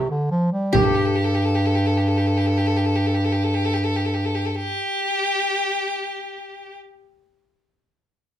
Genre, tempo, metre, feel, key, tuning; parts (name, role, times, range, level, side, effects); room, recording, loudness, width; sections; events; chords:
Arabic maqam ensemble; 69 BPM; 3/4; straight; A4 = 440 Hz
warm bass clarinet; bass; 0.0-4.8 s; G2 to G3; -20 LUFS; equal
darbuka; percussion; 0.3-1.2 s; -26 LUFS; left 3 dB
qanun; melody; 0.7-4.8 s; G4; -22 LUFS; left 1 dB
bright violin; second line; 0.7-6.8 s; G4 to A4; -24 LUFS; left 1 dB
frame drum; percussion; 0.7-1.2 s; -26 LUFS; right 6 dB
light reverb; -19 LUFS; side -10 dB against mid
0.8-6.0 A section